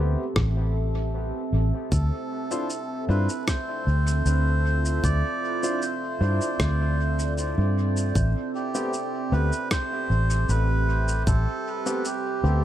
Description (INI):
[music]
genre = ambient dub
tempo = 77 BPM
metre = 4/4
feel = straight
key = A minor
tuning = A4 = 437 Hz
[part]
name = deep dark ambient pad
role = sustained chords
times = 0.0-12.6 s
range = C4 to E5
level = -31 LUFS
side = right 3 dB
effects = chorus, built-in reverb, vintage 12-bit sampler grit
[part]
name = warm upright piano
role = stabs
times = 0.0-12.6 s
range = A3 to C5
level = -34 LUFS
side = left 2 dB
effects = dub echo
[part]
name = vintage muted fingered electric bass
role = bass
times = 0.0-12.6 s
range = A1 to G2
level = -22 LUFS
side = equal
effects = none
[part]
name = electronic kick drum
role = drums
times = 0.4-11.4 s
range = none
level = -26 LUFS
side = equal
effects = none
[part]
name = electronic rim click and shaker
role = drums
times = 0.4-12.2 s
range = none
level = -31 LUFS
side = equal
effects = overdrive, dub echo
[part]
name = melodica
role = melody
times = 1.9-12.6 s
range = G4 to D5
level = -30 LUFS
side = right 1 dB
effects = dub echo
[sound]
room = little or no reverb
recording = echo-heavy mix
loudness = -22 LUFS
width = side -12 dB against mid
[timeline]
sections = 0.0-12.6 A section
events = none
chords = 0.0 Am7; 1.9 Dm9; 8.2 Am9